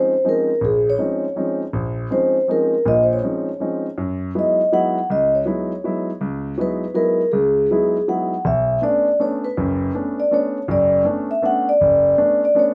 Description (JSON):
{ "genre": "jazz", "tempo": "161 BPM", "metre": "3/4", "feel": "swing 63% on 8ths", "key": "B minor from 8.4 s", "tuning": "A4 = 441 Hz", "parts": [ { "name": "vibraphone with soft mallets", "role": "melody", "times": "0.0-12.7 s", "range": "Ab4 to Gb5", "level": "-20 LUFS", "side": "equal", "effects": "none" }, { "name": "warm grand piano", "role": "accompaniment", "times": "0.0-12.7 s", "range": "F#1 to Fb4", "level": "-25 LUFS", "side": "equal", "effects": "none" } ], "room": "light reverb", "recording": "none", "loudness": "-19 LUFS", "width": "mono", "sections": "0.0-8.4 A section; 8.4-12.7 B section", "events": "none", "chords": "0.0 Eb13sus4; 4.0 Gb13sus4; 8.4 Bm9" }